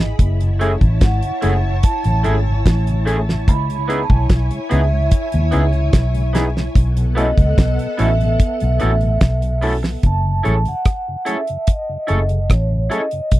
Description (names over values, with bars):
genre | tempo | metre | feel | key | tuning
lovers rock reggae | 73 BPM | 4/4 | straight | unclear | A4 = 439 Hz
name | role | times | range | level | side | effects
soft string machine | second line | 0.0-10.0 s | B3 to B5 | -27 LUFS | left 1 dB | ensemble chorus
mellow tonewheel organ | accompaniment | 0.0-13.2 s | F#2 to G#4 | -27 LUFS | left 2 dB | slow rotary speaker
vintage muted fingered electric bass | bass | 0.0-13.4 s | F#1 to D#2 | -17 LUFS | equal | none
damped 70s drum kit | drums | 0.2-13.4 s | hi-hat, kick drum, rim click, snare drum | -15 LUFS | equal | none
barky tine electric piano | accompaniment | 0.6-13.0 s | A3 to A4 | -24 LUFS | left 2 dB | none
electric guitar through a small old amp | stabs | 0.6-13.0 s | A3 to C#5 | -23 LUFS | right 3 dB | none
vibraphone with soft mallets | melody | 1.0-13.4 s | C#5 to B5 | -24 LUFS | right 2 dB | tape echo
room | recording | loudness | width
little or no reverb | dry, close 1970s-style studio recording | -15 LUFS | side -16 dB against mid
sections
0.0-10.0 A section; 10.0-13.4 B section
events
none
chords
0.2 F#m9; 3.5 C#m7; 6.8 B7sus4; 10.0 F#m7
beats
| 0.20 1.01 1.83 2.65 | 3.47 4.29 5.11 5.93 | 6.75 7.57 8.39 9.21 | 10.04 10.86 11.68 12.50 | 13.32